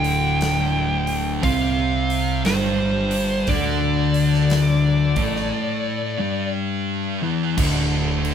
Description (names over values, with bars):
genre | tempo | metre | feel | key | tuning
stoner and doom metal | 59 BPM | 4/4 | swing 65% on 8ths | D minor | A4 = 440 Hz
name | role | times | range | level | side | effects
fuzz lead guitar | melody | 0.0-6.5 s | C5 to G5 | -25 LUFS | equal | distortion
thick fuzz guitar | riff | 0.0-8.3 s | D2 to D4 | -23 LUFS | left 6 dB | distortion
thick fuzz guitar | riff | 0.0-8.3 s | D2 to D4 | -25 LUFS | right 5 dB | distortion
fuzz picked electric bass | bass | 0.0-8.3 s | D1 to D2 | -25 LUFS | right 1 dB | overdrive, tube saturation
big rock drum kit | drums | 0.0-8.3 s | crash cymbal, hi-hat, kick drum, snare drum | -28 LUFS | right 1 dB | none
room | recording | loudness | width
wet studio reverb, RT60 0.5 s | band playing live in one room | -18 LUFS | side -8 dB against mid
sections
0.0-7.6 A section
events
break 5.5-7.6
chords
0.0 D5; 7.6 N.C.